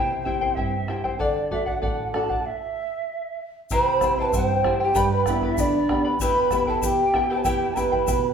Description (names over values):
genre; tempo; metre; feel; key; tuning
andean folk, Andean ensemble; 96 BPM; 2/4; straight; unclear; A4 = 439 Hz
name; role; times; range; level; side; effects
mellow large quena; melody; 0.0-8.3 s; D5 to B5; -25 LUFS; left 2 dB; none
charango; accompaniment; 0.0-8.3 s; E4 to B5; -27 LUFS; left 2 dB; none
nylon-string guitar; accompaniment; 0.0-8.3 s; E2 to G4; -29 LUFS; right 3 dB; none
bombo; percussion; 0.3-8.2 s; none; -30 LUFS; equal; none
mellow polished pan flute; second line; 3.7-8.3 s; D4 to C5; -24 LUFS; right 4 dB; none
egg shaker; percussion; 3.7-8.2 s; none; -37 LUFS; left 7 dB; none
room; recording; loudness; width
wet large studio reverb, RT60 1.2 s; band playing live in one room; -20 LUFS; side -7 dB against mid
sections
0.0-3.7 A section; 3.7-8.3 B section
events
stop 2.4-3.7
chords
0.0 C; 1.2 D; 2.4 N.C.; 3.7 C; 5.0 G; 6.2 Em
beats
0.56 | 1.19 1.82 | 2.44 3.07 | 3.70 4.33 | 4.95 5.58 | 6.20 6.83 | 7.45 8.08